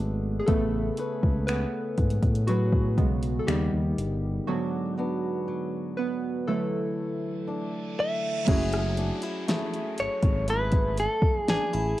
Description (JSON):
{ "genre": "contemporary R&B", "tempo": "60 BPM", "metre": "4/4", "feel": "straight", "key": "F# minor", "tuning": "A4 = 440 Hz", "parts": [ { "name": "warm analog keys", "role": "accompaniment", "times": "0.0-12.0 s", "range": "C#3 to G#5", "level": "-30 LUFS", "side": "right 2 dB", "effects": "chorus, cassette tape" }, { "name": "fingerpicked swing-style acoustic guitar", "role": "arpeggios", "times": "0.0-12.0 s", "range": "G#2 to B4", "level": "-35 LUFS", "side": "left 3 dB", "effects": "cassette tape" }, { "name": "smooth synth bass", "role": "bass", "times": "0.0-11.9 s", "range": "F#1 to A2", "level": "-28 LUFS", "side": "equal", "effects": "none" }, { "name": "smooth R&B drum kit", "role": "drums", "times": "0.5-12.0 s", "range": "crash cymbal, finger snaps, hi-hat, kick drum, rim click, snare drum", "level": "-26 LUFS", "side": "equal", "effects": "none" }, { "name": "reverse cymbal and downlifter", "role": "sound effects", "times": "7.7-12.0 s", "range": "none", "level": "-41 LUFS", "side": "right 3 dB", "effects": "none" }, { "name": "direct-recorded clean electric guitar", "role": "melody", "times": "8.0-12.0 s", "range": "G#4 to E5", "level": "-28 LUFS", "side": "equal", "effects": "cassette tape" } ], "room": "little or no reverb", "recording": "home recording on cassette", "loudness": "-24 LUFS", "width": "side -15 dB against mid", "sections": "0.0-8.5 A section; 8.5-12.0 B section", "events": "synth keys solo 0.0-8.5; break 4.5-8.5; reverse cymbal 7.7-8.5", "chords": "0.5 Amaj9; 3.5 D#7b13; 4.5 G#m7b5; 6.5 E9sus4; 8.5 F#m9", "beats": "| 0.48 1.48 2.48 3.48 | 4.48 5.48 6.48 7.48 | 8.48 9.48 10.48 11.48" }